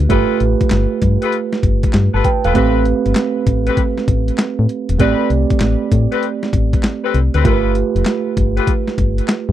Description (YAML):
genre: R&B, new jack swing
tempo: 98 BPM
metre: 4/4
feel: swing 66% on 16ths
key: A minor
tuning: A4 = 440 Hz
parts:
  - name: tine electric piano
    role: accompaniment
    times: 0.0-9.5 s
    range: A3 to A5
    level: -18 LUFS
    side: right 8 dB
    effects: none
  - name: solid FM bass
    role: bass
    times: 0.0-9.5 s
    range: E1 to A2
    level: -16 LUFS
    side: left 1 dB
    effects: none
  - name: warm horn section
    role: stabs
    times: 0.1-8.7 s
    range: C4 to B4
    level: -22 LUFS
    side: left 11 dB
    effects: tape echo
  - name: boom bap sampler-style drum kit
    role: drums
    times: 0.1-9.5 s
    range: handclaps, hi-hat, kick drum, snare drum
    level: -17 LUFS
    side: left 1 dB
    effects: overdrive
room: little or no reverb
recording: dry, close 1970s-style studio recording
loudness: -13 LUFS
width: side -12 dB against mid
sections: 0.0-9.5 A section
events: none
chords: 0.0 G9; 2.5 Am9; 7.4 G9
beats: | 0.10 0.71 1.33 1.94 | 2.55 3.16 3.77 4.39 | 5.00 5.61 6.22 6.84 | 7.45 8.06 8.67 9.29